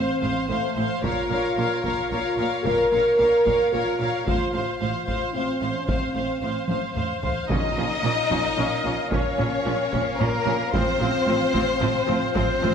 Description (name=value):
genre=cinematic, epic orchestral film score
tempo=111 BPM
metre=3/4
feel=straight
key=Bb harmonic minor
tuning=A4 = 443 Hz
part: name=warm symphonic violin section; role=melody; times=0.0-12.7 s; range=Bb4 to F5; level=-28 LUFS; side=left 4 dB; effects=none
part: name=warm symphonic violin section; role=second line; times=0.0-12.7 s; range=Bb3 to Db5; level=-31 LUFS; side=left 4 dB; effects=none
part: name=warm symphonic viola section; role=accompaniment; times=0.0-12.7 s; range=F3 to C5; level=-29 LUFS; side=right 2 dB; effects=none
part: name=mellow French horn section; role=sustained chords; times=0.0-12.5 s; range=F3 to Bb4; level=-24 LUFS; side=equal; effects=none
part: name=clear symphonic double bass section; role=bass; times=0.0-12.7 s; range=A1 to Bb1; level=-33 LUFS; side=right 4 dB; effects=none
part: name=warm symphonic cello section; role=bass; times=0.2-12.7 s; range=A2 to Bb2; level=-31 LUFS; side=right 3 dB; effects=none
part: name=taiko ensemble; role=drums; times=0.2-12.7 s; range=none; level=-30 LUFS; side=equal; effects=none
part: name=mellow woodwind section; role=sustained chords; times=7.5-12.7 s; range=C4 to F5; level=-30 LUFS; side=equal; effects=none
part: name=timpani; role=percussion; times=7.5-8.3 s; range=Bb2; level=-36 LUFS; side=equal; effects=none
room=wet scoring stage reverb, RT60 1.5 s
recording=none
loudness=-21 LUFS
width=side -7 dB against mid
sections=0.0-7.5 A section; 7.5-12.7 A section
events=drum fill 6.7-7.5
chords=0.0 F/A; 1.0 Bbm; 4.3 F/A; 7.5 Bbm; 10.7 F/A